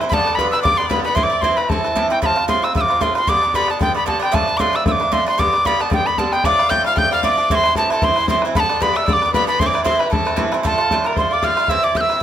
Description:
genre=celtic folk, Celtic reel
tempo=228 BPM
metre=4/4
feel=swing 56% on 8ths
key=A minor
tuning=A4 = 439 Hz
part: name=Irish bouzouki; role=accompaniment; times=0.0-12.2 s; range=G2 to F4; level=-20 LUFS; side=right 3 dB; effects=none
part: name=bodhran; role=percussion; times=0.0-12.2 s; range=none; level=-22 LUFS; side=left 2 dB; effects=none
part: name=mellow tin whistle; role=melody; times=0.1-12.2 s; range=G5 to G6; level=-18 LUFS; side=equal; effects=none
part: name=warm fiddle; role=second line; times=0.1-2.1, 6.4-12.2 s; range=A4 to G5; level=-24 LUFS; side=left 2 dB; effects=none
room=light reverb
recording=none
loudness=-15 LUFS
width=side -10 dB against mid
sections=0.0-2.2 A section; 2.2-10.6 A section; 10.6-12.2 B section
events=none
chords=0.1 G; 1.2 Am; 2.2 F; 3.3 G; 4.3 Dm; 5.4 G; 6.4 Dm; 7.5 Am; 8.5 G; 9.6 Am; 10.6 Dm; 11.7 Am

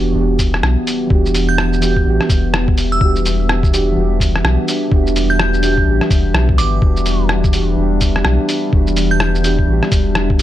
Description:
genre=future garage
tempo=126 BPM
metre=4/4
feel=swing 61% on 16ths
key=E minor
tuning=A4 = 441 Hz
part: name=muted felt-like synth keys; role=accompaniment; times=0.0-10.4 s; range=E3 to G4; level=-21 LUFS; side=right 3 dB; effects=chorus, sidechain pumping, tape echo
part: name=warbly tape-like pad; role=sustained chords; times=0.0-10.4 s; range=E3 to E5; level=-21 LUFS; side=left 2 dB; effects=chorus, built-in reverb, sidechain pumping
part: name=warm sub bass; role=bass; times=0.0-10.4 s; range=E1 to B1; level=-17 LUFS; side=equal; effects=sidechain pumping
part: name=sub drop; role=sound effects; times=1.0-1.1 s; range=none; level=barely audible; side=none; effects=none
part: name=electronic kick drum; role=drums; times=0.4-10.4 s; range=none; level=-15 LUFS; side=equal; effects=none
part: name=lo-fi sampler-style drum kit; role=drums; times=0.4-10.4 s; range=hi-hat, rim click, shaker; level=-20 LUFS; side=equal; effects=none
part: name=glassy synth bell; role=melody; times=1.5-9.8 s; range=D6 to G6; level=-23 LUFS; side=right 2 dB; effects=chorus, phaser, analog delay
room=little or no reverb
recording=dry, gritty hardware recording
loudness=-12 LUFS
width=side -13 dB against mid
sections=0.0-10.4 A section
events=impact 0.0-1.1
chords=0.0 Em9

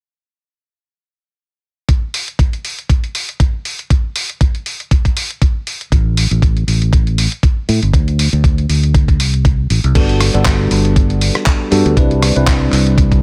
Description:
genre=nu-disco, nu disco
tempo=119 BPM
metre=4/4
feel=swing 55% on 16ths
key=G major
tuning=A4 = 441 Hz
part: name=dusty soul sampler-style drum kit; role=drums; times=1.9-13.2 s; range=crash cymbal, handclaps, hi-hat, rim click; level=-22 LUFS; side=equal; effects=studio reverb
part: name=electronic kick drum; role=drums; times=1.9-13.2 s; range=none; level=-15 LUFS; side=equal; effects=studio reverb
part: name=fingered electric bass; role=bass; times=5.9-13.2 s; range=G1 to A2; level=-16 LUFS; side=equal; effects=tube saturation, sidechain pumping
part: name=bell-like tine electric piano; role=accompaniment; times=9.9-13.2 s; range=G3 to B4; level=-18 LUFS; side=equal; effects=phaser, tape echo
room=little or no reverb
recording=none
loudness=-14 LUFS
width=mono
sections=1.9-10.0 A section; 10.0-13.2 B section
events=none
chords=1.9 N.C.; 7.9 D5; 10.0 Gmaj7; 12.0 Cmaj9

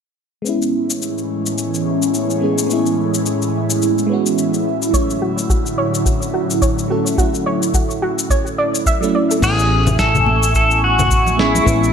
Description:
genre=sunset chillout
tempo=107 BPM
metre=4/4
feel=swing 57% on 16ths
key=A major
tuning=A4 = 440 Hz
part: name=mellow FM electric piano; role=accompaniment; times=0.4-11.9 s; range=F#3 to A4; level=-21 LUFS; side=moving between left 2 dB and right 5 dB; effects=chorus, phaser, auto-pan, low-pass filter, digital delay
part: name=airy breathy pad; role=sustained chords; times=0.5-11.9 s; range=A2 to C#6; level=-20 LUFS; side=right 1 dB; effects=chorus, phaser
part: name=dusty soul sampler-style drum kit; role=drums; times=0.5-11.9 s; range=congas, crash cymbal, shaker, snare drum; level=-23 LUFS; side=left 4 dB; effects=none
part: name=soft round pluck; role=arpeggios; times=4.9-9.4 s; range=F#4 to E5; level=-22 LUFS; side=right 2 dB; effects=analog chorus, cassette tape, digital delay
part: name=electronic kick drum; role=drums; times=4.9-11.8 s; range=none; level=-19 LUFS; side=equal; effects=none
part: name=pedal steel guitar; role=melody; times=9.4-11.9 s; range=E4 to A4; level=-16 LUFS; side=equal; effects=digital delay
part: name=fretless electric bass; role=bass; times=9.4-11.9 s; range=A1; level=-18 LUFS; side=equal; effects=none
part: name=congas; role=percussion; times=10.3-11.6 s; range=none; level=-26 LUFS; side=left 2 dB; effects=none
room=moderate lush hall reverb, RT60 1.8 s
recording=none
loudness=-14 LUFS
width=side -7 dB against mid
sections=0.5-9.4 A section; 9.4-11.9 B section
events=filter sweep on FM electric piano 0.5-9.4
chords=0.5 Amaj7; 4.9 Dmaj9; 9.4 Amaj7

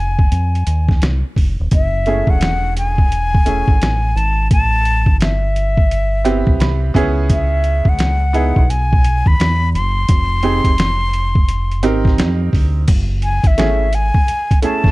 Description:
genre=hip hop, jazz-hop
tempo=86 BPM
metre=4/4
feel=swing 64% on 16ths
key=unclear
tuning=A4 = 441 Hz
part: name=breathy concert flute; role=melody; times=0.0-14.9 s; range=E5 to B#5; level=-20 LUFS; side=left 2 dB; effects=none
part: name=deep dub fingered electric bass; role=bass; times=0.0-14.9 s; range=Eb1 to F2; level=-17 LUFS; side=equal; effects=none
part: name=trip hop sampler-style drum kit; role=drums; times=0.2-14.9 s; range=crash cymbal, hi-hat, kick drum, snare drum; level=-15 LUFS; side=equal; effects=none
part: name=bright upright piano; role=accompaniment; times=2.1-14.9 s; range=A3 to B5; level=-20 LUFS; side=right 3 dB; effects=none
room=little or no reverb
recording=dry, close 1970s-style studio recording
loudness=-13 LUFS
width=side -20 dB against mid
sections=0.0-1.7 A section; 1.7-12.9 A section; 12.9-14.9 B section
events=upright piano fill 6.2-7.3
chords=0.0 Fm7; 1.7 F#m9; 4.5 Am9; 6.9 C#m9; 10.1 Fm9; 12.9 F#m9

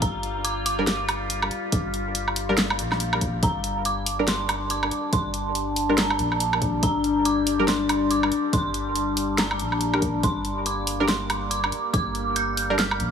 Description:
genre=deep dubstep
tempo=141 BPM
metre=4/4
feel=swing 60% on 16ths, half-time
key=G minor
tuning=A4 = 440 Hz
part: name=dark detuned synth bell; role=melody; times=0.0-13.1 s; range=Bb5 to G6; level=-29 LUFS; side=right 3 dB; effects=chorus, dub echo
part: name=overtone-sweeping drone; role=sustained chords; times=0.0-13.1 s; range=G3 to F4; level=-27 LUFS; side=left 3 dB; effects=chorus, built-in reverb
part: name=soft dub sub bass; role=bass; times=0.0-13.1 s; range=G1 to Bb1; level=-31 LUFS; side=equal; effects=tube saturation
part: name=deep house drum kit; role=drums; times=0.0-13.1 s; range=hi-hat, snare drum, woodblock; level=-26 LUFS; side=equal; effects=none
part: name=electronic kick drum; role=drums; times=0.0-12.0 s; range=none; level=-26 LUFS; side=equal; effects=none
part: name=filtered dub chord stab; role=stabs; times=0.8-12.8 s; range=G3 to Bb4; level=-29 LUFS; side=right 1 dB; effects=chorus, dub echo
room=light reverb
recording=small room ambience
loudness=-21 LUFS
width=side -7 dB against mid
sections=0.0-13.1 A section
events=none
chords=0.0 Gm

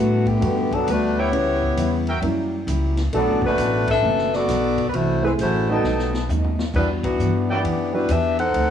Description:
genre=jazz, big band swing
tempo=133 BPM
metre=4/4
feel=swing 66% on 8ths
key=unclear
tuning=A4 = 440 Hz
part: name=warm saxophone section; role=melody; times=0.0-8.7 s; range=D3 to F#5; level=-21 LUFS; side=left 2 dB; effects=cassette tape
part: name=picked steel-string acoustic guitar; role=accompaniment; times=0.0-8.7 s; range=F#2 to A4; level=-29 LUFS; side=left 3 dB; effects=cassette tape
part: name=upright bass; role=bass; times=0.0-8.7 s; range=F#1 to A2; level=-24 LUFS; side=equal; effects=none
part: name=swinging big-band drum kit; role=drums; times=0.3-8.7 s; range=crash cymbal, hi-hat, kick drum, ride cymbal, snare drum, toms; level=-32 LUFS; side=equal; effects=cassette tape
part: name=dark baby grand piano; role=accompaniment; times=0.4-8.1 s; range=G3 to Ab4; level=-27 LUFS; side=right 5 dB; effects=cassette tape
part: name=warm trumpet section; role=stabs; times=1.2-7.6 s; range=E4 to A5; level=-30 LUFS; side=right 2 dB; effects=cassette tape
room=light reverb, studio reverb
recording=home recording on cassette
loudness=-18 LUFS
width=side -9 dB against mid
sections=0.0-8.7 A section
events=band accent 3.8, 7.0; drum fill 5.8-6.7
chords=0.0 Gmaj9; 1.3 C#m7b5; 2.2 F#7b9; 3.1 Bm7; 4.9 F#m7b5; 5.8 B7b13; 6.7 Em7

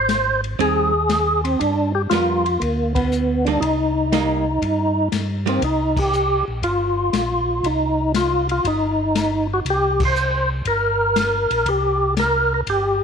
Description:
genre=soul jazz organ trio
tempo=119 BPM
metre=4/4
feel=swing 68% on 8ths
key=C minor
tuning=A4 = 442 Hz
part: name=percussive tonewheel organ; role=melody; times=0.0-13.0 s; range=A#3 to C5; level=-19 LUFS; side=equal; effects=overdrive, chorus vibrato, slow rotary speaker
part: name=mellow tonewheel organ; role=bass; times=0.0-13.0 s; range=G1 to G2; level=-24 LUFS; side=equal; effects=slow rotary speaker
part: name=open jazz drum kit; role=drums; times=0.1-12.8 s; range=crash cymbal, hi-hat, kick drum, ride cymbal, snare drum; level=-28 LUFS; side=left 5 dB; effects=none
part: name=archtop guitar, miked and amplified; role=accompaniment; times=0.6-5.6 s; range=G3 to A#4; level=-24 LUFS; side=right 15 dB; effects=none
room=light reverb, small room reverb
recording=1960s-style stereo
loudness=-17 LUFS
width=side -6 dB against mid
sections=0.0-5.6 A section; 5.6-13.0 A section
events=band accent 2.9, 5.9, 9.9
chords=0.0 Abmaj7; 1.6 G7#9; 3.6 Cm7

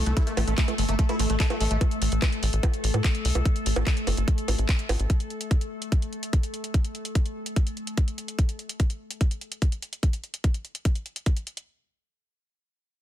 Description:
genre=psychedelic trance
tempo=146 BPM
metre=4/4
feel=straight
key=unclear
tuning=A4 = 435 Hz
part: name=supersaw stab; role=melody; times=0.0-1.8 s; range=A3 to A4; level=-33 LUFS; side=equal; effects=phaser, sidechain pumping, ping-pong delay
part: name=evolving wavetable pad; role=sustained chords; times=0.0-8.4 s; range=A3 to A4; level=-33 LUFS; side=left 1 dB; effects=chorus, built-in reverb, sidechain pumping
part: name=liquid acid bass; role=riff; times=0.0-1.8 s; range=A3 to Bb3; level=-35 LUFS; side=moving between left 4 dB and right 3 dB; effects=phaser, auto-pan, sidechain pumping, dub echo
part: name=tight sequencer bass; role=bass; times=0.0-5.1 s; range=G1 to A2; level=-24 LUFS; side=equal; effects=none
part: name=downlifter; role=sound effects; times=0.0-1.8 s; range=none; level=barely audible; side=none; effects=none
part: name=garage drum kit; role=drums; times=0.1-11.7 s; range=bongos, handclaps, hi-hat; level=-32 LUFS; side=right 2 dB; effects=none
part: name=electronic kick drum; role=drums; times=0.2-11.3 s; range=none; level=-23 LUFS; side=equal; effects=none
room=little or no reverb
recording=dense, heavily limited modern master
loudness=-24 LUFS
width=side -12 dB against mid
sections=0.0-11.7 A section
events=filter sweep on analog synth bass 0.0-5.1; filter sweep on acid bass 0.0-1.8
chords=none

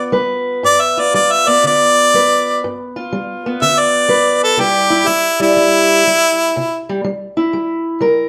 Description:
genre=acoustic country blues, solo or duo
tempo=122 BPM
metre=4/4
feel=swing 67% on 8ths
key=G mixolydian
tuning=A4 = 442 Hz
part: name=bright harmonica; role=melody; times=0.0-6.8 s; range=E4 to E5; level=-14 LUFS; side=equal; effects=none
part: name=fingerpicked steel-string acoustic guitar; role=accompaniment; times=0.0-8.3 s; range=G2 to B4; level=-20 LUFS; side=equal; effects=none
room=moderate studio reverb, RT60 0.8 s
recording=none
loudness=-14 LUFS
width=mono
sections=0.0-8.3 A section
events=none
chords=0.0 G7; 4.6 C

